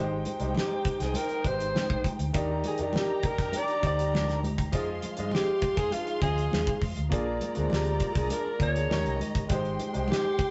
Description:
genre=lush 1970s-style soul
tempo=101 BPM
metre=4/4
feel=straight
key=Eb major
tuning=A4 = 441 Hz
part: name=dark symphonic string section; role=second line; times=0.0-10.5 s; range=Ab3 to C6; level=-39 LUFS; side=equal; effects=none
part: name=clear baby grand piano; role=accompaniment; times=0.0-10.5 s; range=Eb3 to Eb5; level=-37 LUFS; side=equal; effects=none
part: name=electric guitar through a small old amp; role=riff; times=0.0-10.4 s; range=Db4 to C5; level=-41 LUFS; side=equal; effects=none
part: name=vintage muted fingered electric bass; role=bass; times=0.0-10.4 s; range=G1 to G2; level=-34 LUFS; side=equal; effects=none
part: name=damped 70s drum kit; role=drums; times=0.3-10.5 s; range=hi-hat, kick drum, snare drum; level=-34 LUFS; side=equal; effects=none
part: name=congas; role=percussion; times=0.3-10.5 s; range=none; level=-41 LUFS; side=equal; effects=none
part: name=warm alto saxophone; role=melody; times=0.6-10.5 s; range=F4 to D5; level=-32 LUFS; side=equal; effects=none
room=moderate studio reverb, RT60 0.5 s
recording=rough rehearsal-room recording, nothing above 8.0 kHz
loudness=-28 LUFS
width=mono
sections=0.0-10.5 A section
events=none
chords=0.0 Abmaj7; 2.3 Ebmaj7; 4.7 Fm7; 7.1 Bb7; 8.9 Eb7; 9.5 Abmaj7

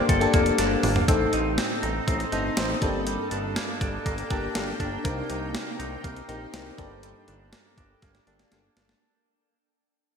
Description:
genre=1980s-style pop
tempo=121 BPM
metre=4/4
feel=straight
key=G minor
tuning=A4 = 440 Hz
part: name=clear concert grand piano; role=melody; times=0.0-0.5 s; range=none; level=barely audible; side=none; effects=none
part: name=FM electric piano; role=accompaniment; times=0.0-9.0 s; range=G2 to Bb5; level=-28 LUFS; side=left 3 dB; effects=chorus
part: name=shimmering ambient pad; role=sustained chords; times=0.0-9.0 s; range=D3 to G5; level=-34 LUFS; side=equal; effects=chorus, built-in reverb
part: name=direct-recorded clean electric guitar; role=riff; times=0.0-9.6 s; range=G3 to A4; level=-31 LUFS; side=right 2 dB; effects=analog chorus, ping-pong delay
part: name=fat analog bass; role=bass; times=0.0-8.9 s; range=F1 to C2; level=-32 LUFS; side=equal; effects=none
part: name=clean 12-bit digital drum machine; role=drums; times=0.1-9.0 s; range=hi-hat, kick drum, snare drum, toms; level=-28 LUFS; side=equal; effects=gated reverb
room=wet lush hall reverb, RT60 1.7 s, digital ambience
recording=bright 1980s-style digital production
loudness=-23 LUFS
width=side -6 dB against mid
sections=0.0-1.1 A section; 1.1-9.0 B section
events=drum fill 0.6-1.1, 8.0-9.0; fade-out 1.1-9.0; FM electric piano fill 4.1-5.0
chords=0.0 Gmadd9; 1.1 Adim; 2.8 Gmadd9; 5.0 Cm7; 6.8 Gmadd9

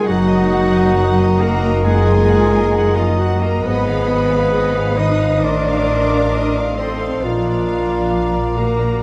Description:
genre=classical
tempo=67 BPM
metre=4/4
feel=rubato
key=Eb minor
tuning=A4 = 441 Hz
part: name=rich studio violin section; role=melody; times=0.0-9.0 s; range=D5 to Gb5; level=-33 LUFS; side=equal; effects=none
part: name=clear clarinet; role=second line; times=0.0-9.0 s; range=F4 to Eb5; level=-28 LUFS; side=equal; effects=none
part: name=clear studio violin section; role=second line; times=0.0-9.0 s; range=F5 to Eb6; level=-32 LUFS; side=equal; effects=none
part: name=dark bassoon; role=accompaniment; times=0.0-9.0 s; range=Eb3 to Bb3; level=-29 LUFS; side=equal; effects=none
part: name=rich studio viola section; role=accompaniment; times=0.0-9.0 s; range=Db4 to Cb5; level=-29 LUFS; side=equal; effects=none
part: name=mellow French horn section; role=sustained chords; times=0.0-9.0 s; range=F4 to Eb5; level=-22 LUFS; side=equal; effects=none
part: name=concert harp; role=arpeggios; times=0.0-9.0 s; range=Gb2 to Cb5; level=-28 LUFS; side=equal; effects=none
part: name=rich studio cello section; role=bass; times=0.0-9.0 s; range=F3 to Eb4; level=-24 LUFS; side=equal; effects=none
part: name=mellow concert flute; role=second line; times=0.1-9.0 s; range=Bb5 to C6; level=-30 LUFS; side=equal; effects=none
part: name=mellow cor anglais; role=second line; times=0.1-9.0 s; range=D5 to Eb5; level=-30 LUFS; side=equal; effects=none
part: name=rich studio double bass section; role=bass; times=0.1-9.0 s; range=Gb1 to Bb1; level=-22 LUFS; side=equal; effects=none
room=moderate scoring stage reverb, RT60 2.0 s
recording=dark, warm production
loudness=-16 LUFS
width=mono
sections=0.0-9.0 A section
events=none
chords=0.1 Ebm/Gb; 3.6 Fm7b5/Ab; 5.4 F7/A; 7.2 Bb

